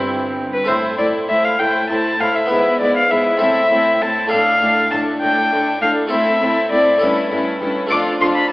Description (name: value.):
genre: classical, baroque-style concerto movement with solo episodes.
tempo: 66 BPM (dotted quarters).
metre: 6/8.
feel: straight.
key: A minor.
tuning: A4 = 442 Hz.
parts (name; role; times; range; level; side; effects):
rich chamber violin section; second line; 0.0-8.5 s; D4 to F4; -23 LUFS; left 2 dB; none.
dark chamber viola section; accompaniment; 0.0-8.5 s; A3 to D4; -25 LUFS; right 1 dB; none.
harpsichord; accompaniment; 0.0-8.5 s; F2 to E5; -22 LUFS; equal; none.
rich chamber cello section; bass; 0.0-8.3 s; F2 to A2; -32 LUFS; right 1 dB; none.
warm chamber double bass section; bass; 0.0-0.7 s; G1; -33 LUFS; right 1 dB; none.
dark violin; melody; 0.5-8.5 s; B4 to D6; -16 LUFS; left 1 dB; none.
dark studio violin section; melody; 0.7-8.5 s; A4 to C5; -29 LUFS; left 1 dB; none.
room: wet recital hall reverb, RT60 1.6 s.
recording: AM radio sound.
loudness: -14 LUFS.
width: side -20 dB against mid.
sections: 0.7-8.5 A section.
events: none.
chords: 0.0 C; 0.7 Am; 2.5 E/G#; 3.4 Am; 4.3 Dm/A; 6.1 Am; 7.0 A7/G; 7.9 Dm/F.